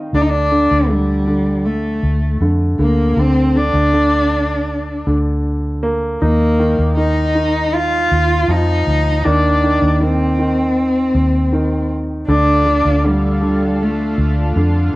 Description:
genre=pop ballad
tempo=79 BPM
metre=4/4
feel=straight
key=unclear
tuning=A4 = 439 Hz
part: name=clear concert grand piano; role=accompaniment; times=0.0-15.0 s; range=D3 to G5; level=-21 LUFS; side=equal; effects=cassette tape
part: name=dark cello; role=melody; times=0.1-14.6 s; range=G3 to F4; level=-16 LUFS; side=equal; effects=cassette tape
part: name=vintage muted fingered electric bass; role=bass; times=0.1-14.9 s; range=D2 to F2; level=-17 LUFS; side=equal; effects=none
part: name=lush unison pad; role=sustained chords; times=12.3-15.0 s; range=D4 to F5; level=-26 LUFS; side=equal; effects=chorus, cassette tape
room=light reverb, small room reverb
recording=home recording on cassette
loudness=-13 LUFS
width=side -19 dB against mid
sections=0.1-15.0 A section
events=none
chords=0.1 Dm; 2.8 N.C.; 6.2 Ebsus2; 9.3 Cm/Eb; 12.3 Dm

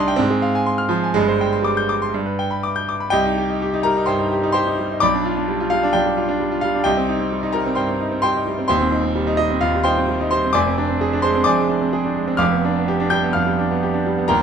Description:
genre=classical, virtuoso piano study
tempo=128 BPM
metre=4/4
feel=rubato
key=C minor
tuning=A4 = 440 Hz
part: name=clear concert grand piano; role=solo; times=0.0-14.4 s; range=Eb1 to G6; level=-17 LUFS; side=right 1 dB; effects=none
room=light reverb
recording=close, detailed microphones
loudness=-17 LUFS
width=side -7 dB against mid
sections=0.0-3.1 A section; 3.1-14.4 B section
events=none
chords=0.2 Fm/Ab; 1.2 Gsus4; 2.1 G; 3.1 Cm; 5.0 G7/B; 6.9 Cm; 8.7 Cm/Eb; 10.5 Dm7b5/F; 12.4 G7/F

